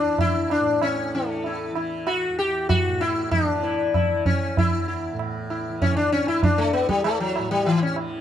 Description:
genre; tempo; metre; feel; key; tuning
indian classical, Hindustani; 96 BPM; 5/4; straight; E raga bageshri; A4 = 439 Hz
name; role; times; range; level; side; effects
sitar; melody; 0.0-8.0 s; E3 to G4; -22 LUFS; left 2 dB; tape echo
tanpura; drone; 0.0-8.2 s; E2 to E3; -32 LUFS; right 2 dB; none
tabla; percussion; 0.2-8.2 s; none; -25 LUFS; right 2 dB; none
room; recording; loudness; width
light reverb; dark, warm production; -20 LUFS; side -10 dB against mid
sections
0.0-8.2 A section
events
none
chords
none

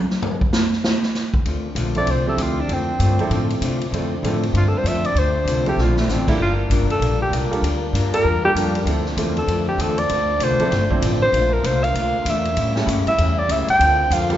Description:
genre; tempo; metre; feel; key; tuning
jazz, big band swing; 194 BPM; 4/4; swing 61% on 8ths; D minor; A4 = 440 Hz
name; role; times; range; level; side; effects
swinging big-band drum kit; drums; 0.1-14.4 s; crash cymbal, hi-hat, kick drum, ride cymbal, snare drum, toms; -25 LUFS; equal; none
vintage hollow-body jazz guitar; accompaniment; 1.5-14.3 s; A2 to Bb4; -26 LUFS; left 3 dB; none
warm trombone section; sustained chords; 1.5-14.4 s; C#3 to F4; -30 LUFS; equal; none
upright bass; bass; 1.5-14.4 s; F1 to C3; -22 LUFS; equal; none
breathy alto saxophone; melody; 2.0-14.4 s; A3 to G5; -21 LUFS; equal; none
clear baby grand piano; accompaniment; 2.0-14.4 s; F3 to C5; -26 LUFS; right 3 dB; none
room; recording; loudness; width
wet scoring stage reverb, RT60 1.7 s; recorded in a church or concert hall, nothing above 7.7 kHz; -17 LUFS; side -12 dB against mid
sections
0.0-1.5 A section; 1.5-14.4 A section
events
drum solo 0.0-1.5; alto saxophone solo 1.5-14.4; drum fill 5.8-6.1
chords
0.0 N.C.; 1.5 Dm7; 6.4 Gm7; 8.9 Dm7; 11.3 Bbmaj7; 12.6 A7; 13.8 Dm7

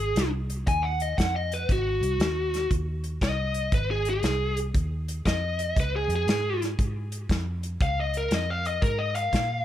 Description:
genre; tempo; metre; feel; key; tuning
electric blues shuffle; 118 BPM; 4/4; swing 65% on 8ths; Ab mixolydian; A4 = 439 Hz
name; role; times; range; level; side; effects
biting lead guitar; melody; 0.0-9.6 s; Gb4 to Ab5; -28 LUFS; left 1 dB; overdrive
vintage muted fingered electric bass; bass; 0.0-9.6 s; Ab1 to Bb2; -29 LUFS; equal; none
natural country drum kit; drums; 0.2-9.5 s; hi-hat, kick drum, snare drum; -27 LUFS; equal; none
room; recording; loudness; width
little or no reverb; none; -24 LUFS; side -12 dB against mid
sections
0.0-9.6 A section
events
lead electric guitar solo 0.0-9.6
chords
0.0 Ab6; 5.8 Db

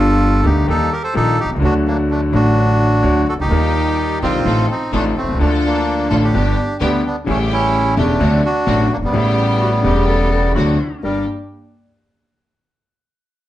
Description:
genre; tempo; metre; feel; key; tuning
tango; 128 BPM; 4/4; rubato; G minor; A4 = 440 Hz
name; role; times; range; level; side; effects
bandoneon; melody; 0.0-11.3 s; G3 to C5; -19 LUFS; right 1 dB; none
clear concert grand piano; accompaniment; 0.0-11.2 s; E1 to A4; -18 LUFS; left 2 dB; none
upright bass; bass; 0.0-11.2 s; E1 to Eb2; -18 LUFS; right 1 dB; none
rich studio string section; stabs; 3.5-11.2 s; A3 to A4; -26 LUFS; equal; none
bright clarinet; second line; 9.6-11.2 s; F#4 to Bb4; -24 LUFS; left 2 dB; none
room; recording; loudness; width
moderate studio reverb, RT60 0.7 s; heard from further back in the room, nothing above 10.7 kHz; -14 LUFS; side -14 dB against mid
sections
0.0-11.0 A section; 11.0-12.9 B section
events
none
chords
0.0 Gm; 0.7 Eb; 1.6 D; 3.5 Ebmaj7; 4.5 F7/A; 5.4 Dm; 6.3 G; 7.3 A7; 8.2 D7; 9.1 A7; 10.6 D7; 11.0 Gm

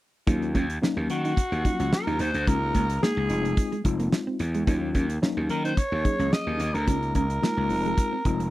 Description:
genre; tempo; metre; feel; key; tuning
early-eighties boogie funk; 109 BPM; 4/4; straight; Eb dorian; A4 = 438 Hz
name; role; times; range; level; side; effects
mellow tine electric piano; accompaniment; 0.3-8.5 s; F3 to Ab4; -29 LUFS; left 3 dB; medium stereo tremolo
mellow electric guitar; riff; 0.3-8.5 s; Ab3 to Eb4; -31 LUFS; right 4 dB; wide subtle chorus
gritty slap bass; bass; 0.3-8.5 s; F1 to Eb3; -28 LUFS; equal; overdrive
damped 70s drum kit; drums; 0.3-8.5 s; hi-hat, kick drum, snare drum; -25 LUFS; equal; none
raspy alto saxophone; melody; 1.1-8.5 s; Gb4 to Eb5; -28 LUFS; equal; slapback echo
room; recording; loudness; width
little or no reverb; dry, close 1970s-style studio recording; -23 LUFS; side -16 dB against mid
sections
0.3-8.5 A section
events
none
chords
0.3 Ebm9; 2.5 Db69; 3.3 Fm7; 4.7 Ebm9; 6.9 Db69; 7.7 Fm7

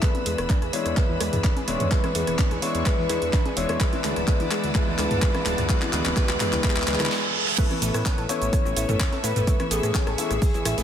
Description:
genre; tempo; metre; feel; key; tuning
progressive house; 127 BPM; 4/4; straight; A major; A4 = 439 Hz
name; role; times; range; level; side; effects
soft octave-layered synth lead; melody; 0.0-10.8 s; G#4 to C#5; -29 LUFS; left 1 dB; chorus, sidechain pumping, dub echo
clear studio string section; sustained chords; 0.0-10.8 s; G#4 to F#6; -35 LUFS; left 1 dB; sidechain pumping
analog pluck; arpeggios; 0.0-10.8 s; E3 to A4; -32 LUFS; right 2 dB; chorus, sidechain pumping, dub echo
warm grand piano; stabs; 0.0-10.3 s; E3 to E4; -30 LUFS; left 3 dB; sidechain pumping, dub echo
electronic kick drum; drums; 0.0-10.5 s; none; -23 LUFS; equal; overdrive
house drum kit; drums; 0.0-10.8 s; crash cymbal, handclaps, hi-hat, shaker, snare drum; -29 LUFS; equal; sidechain pumping on hats, high-pass filter on hats, high-pass filter on snare, sidechain pumping on cymbals, high-pass filter on cymbals, sidechain pumping on perc, high-pass filter on perc, high-pass filter on room
punchy analog drum machine; percussion; 0.0-10.8 s; congas, rim click, toms; -33 LUFS; left 1 dB; sidechain pumping on perc, sidechain pumping on toms, sidechain pumping on snare
riser and reverse cymbal; sound effects; 0.0-7.6 s; none; -33 LUFS; right 3 dB; none
fat analog bass; bass; 0.3-10.8 s; D1 to A2; -29 LUFS; equal; sidechain pumping
soft round pluck; second line; 7.6-10.8 s; G#4 to C#5; -37 LUFS; left 4 dB; none
dusty soul sampler-style drum kit; drums; 7.6-10.8 s; hi-hat, snare drum; -42 LUFS; left 1 dB; none
room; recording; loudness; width
light reverb, digital ambience; none; -21 LUFS; side -9 dB against mid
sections
0.0-7.6 A section; 7.6-10.8 B section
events
build-up 0.0-7.6; riser 0.0-7.6; filter sweep on synth pluck 0.0-7.6; drum fill 0.0-7.1, 7.1-7.6; reverse cymbal 6.6-7.6; drop 7.6-10.8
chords
0.0 E7; 3.8 Dadd9; 7.6 Aadd9

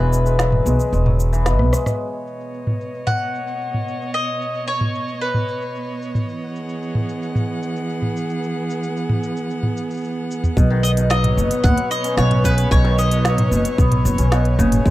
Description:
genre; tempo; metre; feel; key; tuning
folktronica; 112 BPM; 4/4; straight; B major; A4 = 440 Hz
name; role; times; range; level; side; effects
mandolin; melody; 0.0-6.0, 10.8-14.5 s; B4 to F#5; -24 LUFS; left 1 dB; tape echo
cimbalom; arpeggios; 0.0-3.3, 10.6-14.9 s; B2 to C#4; -23 LUFS; left 2 dB; tape echo
upright bass; bass; 0.0-1.7, 10.6-14.9 s; E1 to D#2; -17 LUFS; equal; none
organic electronic drum kit; drums; 0.1-14.9 s; hi-hat, rim click, shaker, snare drum, toms; -23 LUFS; equal; low-pass filter on perc, low-pass filter on snare, low-pass filter on toms, low-pass filter on hats, low-pass filter on room
warm string quartet; sustained chords; 2.0-14.9 s; B2 to F#5; -26 LUFS; right 2 dB; low-pass filter
electronic kick drum; drums; 10.6-14.9 s; none; -16 LUFS; equal; none
room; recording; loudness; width
little or no reverb; dry, close 1970s-style studio recording; -17 LUFS; side -16 dB against mid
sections
0.0-2.0 A section; 2.0-10.6 B section; 10.6-14.9 C section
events
kick drops out 0.9-2.0; drum fill 1.5-2.0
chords
0.0 Eadd9; 2.0 Badd9; 6.3 Eadd9; 10.6 Badd9

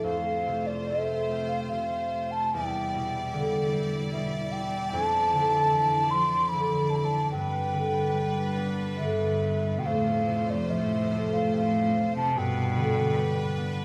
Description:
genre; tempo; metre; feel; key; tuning
celtic folk, Celtic slow air; 73 BPM; 3/4; uneven beats, rubato; unclear; A4 = 436 Hz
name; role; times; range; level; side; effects
mellow hollow baroque flute; melody; 0.0-13.6 s; D5 to C6; -30 LUFS; equal; none
concert harp; accompaniment; 0.0-13.8 s; D2 to A5; -32 LUFS; equal; none
clear studio string section; sustained chords; 0.0-13.8 s; D3 to D5; -37 LUFS; equal; none
rich cello; second line; 9.0-13.6 s; F2 to C3; -31 LUFS; equal; none
room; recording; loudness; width
light reverb; close, detailed microphones, lossy compression artefacts; -27 LUFS; mono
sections
0.1-13.8 A section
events
none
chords
0.1 F; 2.5 Em7; 4.9 Dmadd9/F; 7.3 G; 9.8 F; 12.4 G

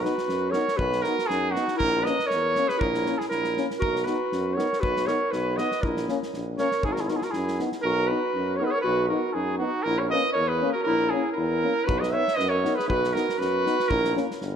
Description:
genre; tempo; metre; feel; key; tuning
balkan folk, Balkan brass band; 119 BPM; 2/4; swing 54% on 16ths; unclear; A4 = 440 Hz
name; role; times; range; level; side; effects
warm trumpet; melody; 0.0-14.1 s; F#4 to E5; -26 LUFS; right 2 dB; none
mellow clarinet; second line; 0.0-14.2 s; D#4 to C#5; -29 LUFS; equal; none
clear euphonium; accompaniment; 0.0-14.3 s; C#4 to D#4; -34 LUFS; left 8 dB; none
warm trombone; accompaniment; 0.0-14.3 s; A#3 to B3; -36 LUFS; right 5 dB; none
clear tuba; bass; 0.0-14.6 s; G1 to F#2; -31 LUFS; left 1 dB; none
warm soul drum kit; percussion; 0.1-7.8, 11.9-14.5 s; kick drum, snare drum; -35 LUFS; equal; none
room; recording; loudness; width
moderate concert hall reverb, RT60 2.4 s; none; -22 LUFS; side -8 dB against mid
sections
0.0-7.8 A section; 7.8-14.6 A section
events
none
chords
0.0 B; 1.8 A#dim; 3.8 B; 5.8 A#dim; 6.8 G#m; 7.8 B; 9.9 A#dim; 11.9 B; 13.9 Gdim7

